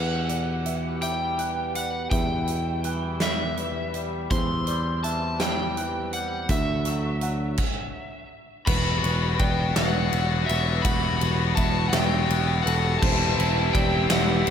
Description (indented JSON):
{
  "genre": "post-rock",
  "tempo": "55 BPM (dotted quarters)",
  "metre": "6/8",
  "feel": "straight",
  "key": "E minor",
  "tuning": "A4 = 439 Hz",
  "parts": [
    { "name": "overdriven slide guitar", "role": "melody", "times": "0.0-14.5 s", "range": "E5 to C6", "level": "-30 LUFS", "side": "equal", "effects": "slapback echo, digital delay" },
    { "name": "warm studio string section", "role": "sustained chords", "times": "0.0-14.5 s", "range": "E3 to G4", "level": "-36 LUFS", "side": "equal", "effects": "none" },
    { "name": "felt-muted upright piano", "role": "arpeggios", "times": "0.0-14.5 s", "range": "A4 to F#6", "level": "-36 LUFS", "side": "right 3 dB", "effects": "slapback echo, digital delay" },
    { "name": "twangy electric guitar", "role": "arpeggios", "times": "0.0-14.5 s", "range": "E2 to F#4", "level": "-33 LUFS", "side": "left 2 dB", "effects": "phaser, slapback echo, digital delay" },
    { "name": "picked electric bass", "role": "bass", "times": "0.0-14.5 s", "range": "E1 to E2", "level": "-27 LUFS", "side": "equal", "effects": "none" },
    { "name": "huge arena drum kit", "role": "drums", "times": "0.3-14.5 s", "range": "crash cymbal, hi-hat, kick drum, ride cymbal, snare drum", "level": "-28 LUFS", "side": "equal", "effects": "none" },
    { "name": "tight distorted guitar", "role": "riff", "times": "8.7-14.5 s", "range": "B3 to F#4", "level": "-28 LUFS", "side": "left 12 dB", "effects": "distortion, slapback echo" },
    { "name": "distorted electric guitar", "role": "riff", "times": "13.0-14.5 s", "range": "C4 to E4", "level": "-30 LUFS", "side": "right 10 dB", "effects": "distortion, slapback echo" }
  ],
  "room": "moderate lush hall reverb, RT60 2.5 s",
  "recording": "big arena sound",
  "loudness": "-22 LUFS",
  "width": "side -8 dB against mid",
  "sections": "0.0-8.7 A section; 8.7-14.5 B section",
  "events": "stop 7.6-8.7; build-up 8.7-14.5",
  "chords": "0.0 Emadd9; 4.3 C/E; 6.5 Dadd9; 8.7 Emadd9; 13.0 C/E"
}